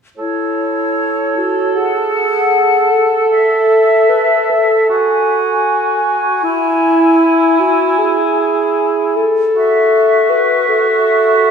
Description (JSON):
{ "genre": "cinematic", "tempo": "77 BPM", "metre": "4/4", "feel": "rubato", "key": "A major", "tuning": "A4 = 440 Hz", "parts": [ { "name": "dark cor anglais", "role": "second line", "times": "0.2-11.5 s", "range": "E4 to A4", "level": "-17 LUFS", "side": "right 4 dB", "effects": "none" }, { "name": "mellow clarinet", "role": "second line", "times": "0.2-11.5 s", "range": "E4 to B4", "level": "-14 LUFS", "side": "equal", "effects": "none" }, { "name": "small flute group", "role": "second line", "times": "0.2-11.5 s", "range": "C#5 to G#5", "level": "-16 LUFS", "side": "left 3 dB", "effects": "none" } ], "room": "wet scoring stage reverb, RT60 2.0 s", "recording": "heard from further back in the room", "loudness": "-11 LUFS", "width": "side -6 dB against mid", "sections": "0.2-11.5 A section", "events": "none", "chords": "0.2 A/E; 1.8 F#madd9/G#; 3.3 A5; 4.9 F#madd9; 6.4 E; 9.6 F#m7", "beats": "| 0.17 0.97 1.76 2.54 | 3.32 4.11 4.89 5.67 | 6.45 7.23 7.99 8.77 | 9.55 10.31 11.06" }